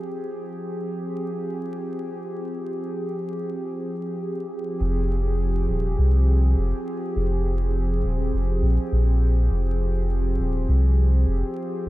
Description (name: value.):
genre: ambient dub.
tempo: 102 BPM.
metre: 4/4.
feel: swing 59% on 16ths.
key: F minor.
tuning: A4 = 440 Hz.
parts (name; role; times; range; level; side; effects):
warbly tape-like pad; sustained chords; 0.0-11.9 s; F3 to Ab4; -28 LUFS; equal; chorus, built-in reverb.
soft dub sub bass; bass; 4.8-11.9 s; Eb1 to C2; -20 LUFS; equal; none.
room: light reverb, digital ambience.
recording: vinyl crackle.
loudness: -22 LUFS.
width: side -17 dB against mid.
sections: 0.0-4.8 A section; 4.8-11.9 B section.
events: none.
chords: 0.0 Fmadd9.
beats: | 0.10 0.69 1.28 1.86 | 2.45 3.04 3.63 4.22 | 4.80 5.39 5.98 6.57 | 7.16 7.75 8.34 8.92 | 9.51 10.10 10.69 11.28 | 11.86.